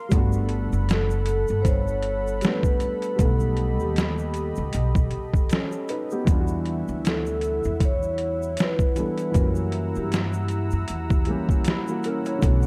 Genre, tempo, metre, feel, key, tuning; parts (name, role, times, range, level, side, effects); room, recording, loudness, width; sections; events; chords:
lo-fi hip hop; 78 BPM; 4/4; swing 56% on 16ths; A4 = 438 Hz
felt-muted upright piano; accompaniment; 0.0-12.7 s; D3 to F#5; -32 LUFS; equal; cassette tape, low-pass filter
warm analog pad; sustained chords; 0.0-12.7 s; A3 to E6; -37 LUFS; equal; chorus, low-pass filter
upright bass; bass; 0.1-12.7 s; F#1 to G2; -28 LUFS; equal
trip hop sampler-style drum kit; drums; 0.1-12.6 s; hi-hat, kick drum, snare drum; -25 LUFS; equal; overdrive
egg shaker; percussion; 0.1-12.7 s; -52 LUFS; equal
vibraphone with soft mallets; melody; 0.9-11.5 s; G4 to C#5; -31 LUFS; equal; low-pass filter, analog delay
light reverb, studio ambience; dark, warm production; -24 LUFS; mono
0.0-12.7 A section
0.1 Gmaj9; 3.2 B7b13; 6.3 Em9; 9.3 F#7b9